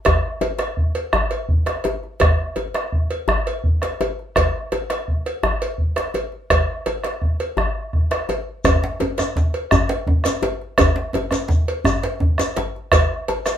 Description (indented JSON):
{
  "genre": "west african traditional, West African drum ensemble",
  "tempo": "112 BPM (dotted quarters)",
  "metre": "12/8",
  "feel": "straight",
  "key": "none",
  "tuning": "none",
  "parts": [
    { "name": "bombo", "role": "percussion", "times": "0.1-13.6 s", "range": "none", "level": "-19 LUFS", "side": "right 1 dB", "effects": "none" },
    { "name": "cowbell", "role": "percussion", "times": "0.1-13.6 s", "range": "none", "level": "-24 LUFS", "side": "right 2 dB", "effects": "none" },
    { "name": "djembe", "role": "percussion", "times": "0.1-13.6 s", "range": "none", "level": "-25 LUFS", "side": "left 2 dB", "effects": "none" },
    { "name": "djembe", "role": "percussion", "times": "8.6-12.7 s", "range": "none", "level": "-23 LUFS", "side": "right 1 dB", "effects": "none" },
    { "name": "shekere", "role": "percussion", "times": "8.6-13.6 s", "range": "none", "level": "-30 LUFS", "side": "left 1 dB", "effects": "none" }
  ],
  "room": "wet studio reverb, RT60 0.5 s",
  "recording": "band playing live in one room",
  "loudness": "-18 LUFS",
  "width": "side -10 dB against mid",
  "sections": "0.0-8.6 A section; 8.6-13.6 B section",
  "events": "none",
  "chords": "none"
}